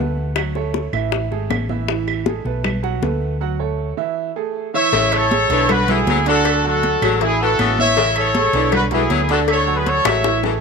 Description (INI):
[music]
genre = latin, salsa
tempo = 158 BPM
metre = 4/4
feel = straight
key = A major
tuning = A4 = 439 Hz
[part]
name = warm baby grand piano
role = accompaniment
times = 0.0-10.6 s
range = D3 to F#5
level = -24 LUFS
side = right 12 dB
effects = none
[part]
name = hollow-body short-scale fingered electric bass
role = bass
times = 0.0-10.6 s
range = G#1 to D2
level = -23 LUFS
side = equal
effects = none
[part]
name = congas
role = percussion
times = 0.2-10.6 s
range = none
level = -26 LUFS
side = equal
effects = none
[part]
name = bongos and cowbell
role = percussion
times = 0.4-10.5 s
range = none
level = -25 LUFS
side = left 15 dB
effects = none
[part]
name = claves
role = percussion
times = 0.4-2.8, 5.1-10.2 s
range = none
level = -30 LUFS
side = right 13 dB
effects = none
[part]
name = clear horn section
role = melody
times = 4.7-10.4 s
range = E4 to E5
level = -17 LUFS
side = left 1 dB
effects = none
[part]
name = clear saxophone section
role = second line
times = 4.9-10.5 s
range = C#3 to F#3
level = -23 LUFS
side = left 13 dB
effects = tape echo
[sound]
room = light reverb, small room ambience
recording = 1960s-style stereo with parts hard left and right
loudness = -16 LUFS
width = side -5 dB against mid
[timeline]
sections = 0.0-4.9 A section; 4.9-10.6 B section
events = drum fill 10.1-10.6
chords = 0.4 Dmaj7; 1.1 A5; 2.6 Bm7; 3.4 Dmaj7; 4.2 Amaj7; 5.7 Bm7; 6.4 D; 7.2 Amaj7; 8.7 Bm7; 9.5 Dmaj7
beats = | 0.36 0.74 1.12 1.50 | 1.89 2.27 2.65 3.03 | 3.41 3.79 4.17 4.55 | 4.93 5.31 5.69 6.07 | 6.45 6.83 7.21 7.59 | 7.97 8.35 8.73 9.11 | 9.48 9.86 10.24